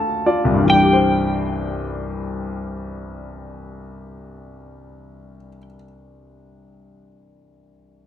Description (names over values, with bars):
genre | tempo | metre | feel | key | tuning
pop | 46 BPM (dotted quarters) | 6/8 | straight | C major | A4 = 439 Hz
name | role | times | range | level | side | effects
clear grand piano | accompaniment | 0.0-8.1 s | C2 to A5 | -20 LUFS | left 2 dB | none
twelve-string electric guitar | melody | 0.7-5.6 s | G5 | -17 LUFS | equal | tremolo
room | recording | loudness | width
moderate echo chamber reverb, RT60 1.3 s, small room ambience | none | -17 LUFS | side -10 dB against mid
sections
0.7-5.9 A section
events
grand piano fill 0.0-0.7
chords
0.0 Dm; 0.7 Cadd9